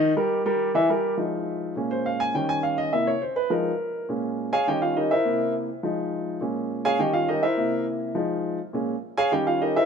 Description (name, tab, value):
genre	latin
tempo	206 BPM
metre	4/4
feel	straight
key	F minor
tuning	A4 = 440 Hz
part	warm upright piano	solo	0.0-9.9 s	Bb2 to Ab5	-22 LUFS	equal	none
room	light reverb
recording	minimal, uncompressed stereo recording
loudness	-22 LUFS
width	side -6 dB against mid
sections	0.0-1.2 A section; 1.2-9.9 B section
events	upright piano solo 1.2-9.9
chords	0.0 Eb; 0.6 Edim; 1.2 Fm7; 1.8 Bbm7; 2.4 Eb7; 2.9 C7; 3.5 Fm7; 4.1 Bbm7; 4.7 Eb7; 5.3 C7; 5.8 Fm7; 6.4 Bbm7; 7.0 Eb7; 7.6 C7; 8.2 Fm7; 8.7 Bbm7; 9.3 Eb7